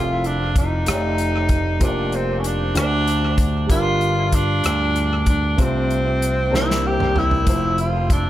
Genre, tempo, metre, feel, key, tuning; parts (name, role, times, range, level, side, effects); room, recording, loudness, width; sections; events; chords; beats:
slow gospel; 64 BPM (dotted quarters); 6/8; straight; F major; A4 = 440 Hz
clear tenor saxophone; melody; 0.0-8.3 s; C4 to G4; -22 LUFS; right 1 dB; tape echo
warm grand piano; accompaniment; 0.0-8.3 s; G2 to F5; -25 LUFS; equal; tape echo
slap bass with an envelope filter; bass; 0.0-8.3 s; F1 to D2; -22 LUFS; equal
natural country drum kit; drums; 0.2-8.2 s; hi-hat, kick drum, rim click, snare drum, toms; -22 LUFS; equal
light reverb; echo-heavy mix; -17 LUFS; side -13 dB against mid
0.0-8.3 A section
drum fill 6.5-7.5
0.0 F; 0.9 F13; 1.8 Bb6/F; 2.8 D7; 3.7 Gm7; 5.6 F/C; 6.5 C9; 7.5 Fmaj7
0.87 | 1.81 2.76 | 3.70 4.64 | 5.58 6.53 | 7.47